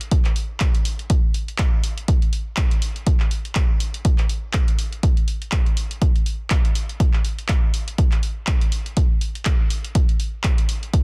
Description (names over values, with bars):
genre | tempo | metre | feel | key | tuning
house | 122 BPM | 4/4 | swing 57% on 16ths | none | none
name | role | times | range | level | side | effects
punchy analog drum machine | drums | 0.0-11.0 s | handclaps, hi-hat | -32 LUFS | equal | none
electronic kick drum | drums | 0.1-11.0 s | none | -21 LUFS | equal | none
room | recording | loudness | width
little or no reverb | dense, heavily limited modern master | -21 LUFS | mono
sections
0.0-11.0 A section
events
none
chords
none